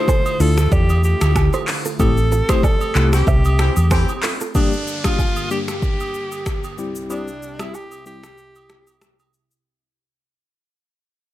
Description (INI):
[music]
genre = afrobeats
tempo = 94 BPM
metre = 4/4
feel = swing 55% on 16ths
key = G dorian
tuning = A4 = 441 Hz
[part]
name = edgy alto saxophone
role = melody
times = 0.0-9.3 s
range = D4 to C5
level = -25 LUFS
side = equal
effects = none
[part]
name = tine electric piano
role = accompaniment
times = 0.0-8.2 s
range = G3 to G4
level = -25 LUFS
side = left 5 dB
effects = medium tremolo
[part]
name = warm analog pad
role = sustained chords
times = 0.0-9.6 s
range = C2 to G4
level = -32 LUFS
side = equal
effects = chorus
[part]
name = direct-recorded clean electric guitar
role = riff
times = 0.1-4.5 s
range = F4 to E5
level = -28 LUFS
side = right 6 dB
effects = spring reverb, tape echo
[part]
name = deep house drum kit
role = drums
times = 0.1-9.6 s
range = finger snaps, handclaps, hi-hat, kick drum, rim click, shaker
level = -20 LUFS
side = equal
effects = overdrive
[part]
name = woodblock and agogo bells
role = percussion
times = 0.1-9.3 s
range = none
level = -32 LUFS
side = right 6 dB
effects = none
[part]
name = hollow-body short-scale fingered electric bass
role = bass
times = 0.4-4.0 s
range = A1 to E2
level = -16 LUFS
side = equal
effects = none
[part]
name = clear horn section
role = second line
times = 3.1-4.1 s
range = E3 to G4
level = -28 LUFS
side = left 2 dB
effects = tape echo
[part]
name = downlifter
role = sound effects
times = 4.5-9.7 s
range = none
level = -32 LUFS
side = equal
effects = none
[sound]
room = little or no reverb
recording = none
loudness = -16 LUFS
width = side -14 dB against mid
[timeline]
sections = 0.0-4.5 A section; 4.5-9.7 B section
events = band accent 2.0-4.5; fade-out 4.5-9.7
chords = 0.0 Dmadd9; 2.0 Am7; 4.5 Gm; 6.8 C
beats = 0.08 0.72 1.36 | 2.00 2.63 3.27 3.91 | 4.55 5.19 5.83 6.46 | 7.10 7.74 8.38 9.02